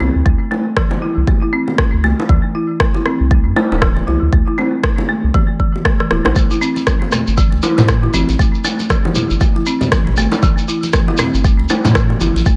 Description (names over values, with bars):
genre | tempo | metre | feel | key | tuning
afro house | 118 BPM | 4/4 | swing 58% on 16ths | A minor pentatonic | A4 = 441 Hz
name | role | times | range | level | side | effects
folk marimba with medium hard mallets | arpeggios | 0.0-12.6 s | E3 to E4 | -21 LUFS | equal | sidechain pumping, low-pass filter, digital delay
warm sub bass | bass | 0.0-12.6 s | D1 to A2 | -19 LUFS | equal | sidechain pumping
bongos | percussion | 0.0-12.3 s | none | -25 LUFS | equal | none
electronic kick drum | drums | 0.3-12.6 s | none | -17 LUFS | equal | overdrive
electronic rim click | drums | 0.8-12.1 s | none | -23 LUFS | equal | overdrive
congas | percussion | 6.4-12.6 s | none | -25 LUFS | equal | none
shekere | percussion | 6.4-12.6 s | none | -27 LUFS | equal | none
room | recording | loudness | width
studio reverb | nothing above 11.0 kHz | -15 LUFS | mono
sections
0.0-12.6 A section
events
drum fill 6.0-6.4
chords
0.0 D5; 6.4 A5